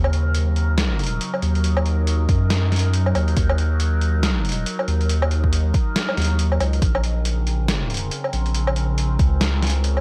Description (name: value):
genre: deep dubstep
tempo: 139 BPM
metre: 4/4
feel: swing 59% on 16ths, half-time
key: unclear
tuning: A4 = 440 Hz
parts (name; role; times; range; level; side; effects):
- overtone-sweeping drone; sustained chords; 0.0-10.0 s; Db3 to Bb4; -30 LUFS; equal; chorus, built-in reverb, phaser
- saturated sub bass; bass; 0.0-10.0 s; Bb1 to Gb2; -22 LUFS; equal; none
- trip hop sampler-style drum kit; drums; 0.0-10.0 s; hi-hat, snare drum, woodblock; -28 LUFS; equal; none
- electronic kick drum; drums; 2.3-9.3 s; none; -23 LUFS; equal; overdrive
room: little or no reverb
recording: none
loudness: -21 LUFS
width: mono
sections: 0.0-10.0 A section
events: kick drops out 6.4-6.8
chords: 0.0 Ebm; 6.8 Bbmadd9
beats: 0.34 0.78 1.21 | 1.64 2.07 2.50 2.94 | 3.37 3.80 4.23 4.66 | 5.09 5.53 5.96 6.39 | 6.82 7.25 7.68 8.12 | 8.55 8.98 9.41 9.84